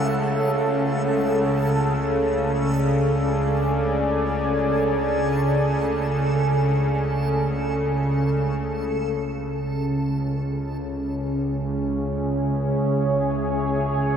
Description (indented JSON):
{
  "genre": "dark ambient drone",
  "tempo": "free time",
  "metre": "none",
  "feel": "none",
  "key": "C# phrygian",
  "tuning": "A4 = 440 Hz",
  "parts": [
    { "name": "deep dark ambient pad", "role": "sustained chords", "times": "0.0-14.2 s", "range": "C#3 to G#5", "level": "-23 LUFS", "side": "equal", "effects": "chorus, built-in reverb" },
    { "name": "bowed-like drone", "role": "drone", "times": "0.0-14.2 s", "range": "C#2 to C#3", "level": "-24 LUFS", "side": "equal", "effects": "built-in reverb" },
    { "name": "backwards swelling texture", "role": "texture", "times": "0.0-8.7 s", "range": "A4", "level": "-33 LUFS", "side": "right 2 dB", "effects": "built-in reverb" }
  ],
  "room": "wet cathedral reverb, RT60 6.8 s",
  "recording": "none",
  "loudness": "-20 LUFS",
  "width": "side -8 dB against mid",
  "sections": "0.0-8.7 A section; 8.7-14.2 B section",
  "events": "filter sweep on synth drone 8.7-14.2",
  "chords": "0.0 D/C#; 8.7 C#m"
}